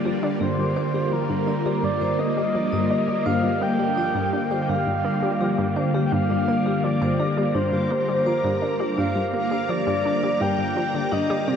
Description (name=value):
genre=ambient, sequencer-driven space music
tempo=84 BPM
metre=4/4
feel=straight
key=G minor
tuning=A4 = 440 Hz
part: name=phased string machine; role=sustained chords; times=0.0-11.6 s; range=D3 to Bb5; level=-24 LUFS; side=equal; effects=ensemble chorus, phaser
part: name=analog pluck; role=riff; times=0.0-11.6 s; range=G2 to D4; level=-28 LUFS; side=equal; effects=chorus, tape echo
part: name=bubbling stepped-filter texture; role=texture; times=0.0-11.6 s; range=D5 to D6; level=-38 LUFS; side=left 1 dB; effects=chorus, built-in reverb
part: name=vibraphone with medium hard mallets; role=arpeggios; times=0.1-11.6 s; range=D4 to G5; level=-32 LUFS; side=moving between left 5 dB and right 3 dB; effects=auto-pan, tape echo
part: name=breathy flute-like synth lead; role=melody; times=0.4-11.6 s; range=Bb4 to G5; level=-25 LUFS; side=equal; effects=wide subtle chorus, tape echo
room=wet huge ambient reverb, RT60 8.2 s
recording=worn, warbling old tape, cassette tape, warbly pitch drift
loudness=-20 LUFS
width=side -7 dB against mid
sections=0.0-11.6 A section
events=none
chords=0.0 Gm7